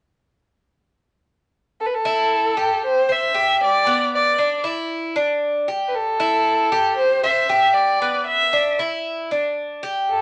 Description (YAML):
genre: latin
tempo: 116 BPM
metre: 4/4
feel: straight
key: A minor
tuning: A4 = 440 Hz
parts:
  - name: warm violin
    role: melody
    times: 1.8-10.2 s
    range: A4 to E5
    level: -21 LUFS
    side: equal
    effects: none
  - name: Cuban tres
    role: arpeggios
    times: 2.1-10.2 s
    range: B3 to C5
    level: -23 LUFS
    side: equal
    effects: none
room: wet studio reverb, RT60 0.6 s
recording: nothing above 10.3 kHz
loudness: -20 LUFS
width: mono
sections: 1.8-10.2 A section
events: none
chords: 1.8 Am7; 3.9 E5; 5.9 Am7; 8.0 E5